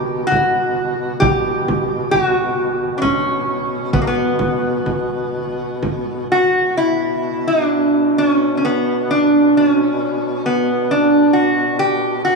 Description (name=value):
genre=caucasian folk, Caucasian lament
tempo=66 BPM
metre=3/4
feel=rubato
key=B minor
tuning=A4 = 438 Hz
part: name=metal-body resonator slide guitar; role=melody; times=0.0-12.4 s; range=A#3 to G4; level=-16 LUFS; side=equal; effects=none
part: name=warm duduk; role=drone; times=0.0-12.4 s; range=B2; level=-24 LUFS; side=equal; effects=none
part: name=frame drum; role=percussion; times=0.3-6.0 s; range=none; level=-24 LUFS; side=right 1 dB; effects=none
room=wet cathedral reverb, RT60 4.7 s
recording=studio reverb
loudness=-15 LUFS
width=side -3 dB against mid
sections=0.0-6.8 A section; 6.8-12.4 B section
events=none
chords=none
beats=0.32 | 1.22 2.13 3.04 | 3.94 4.86 5.82 | 6.78 7.71 8.65 | 9.57 10.46 11.36 | 12.25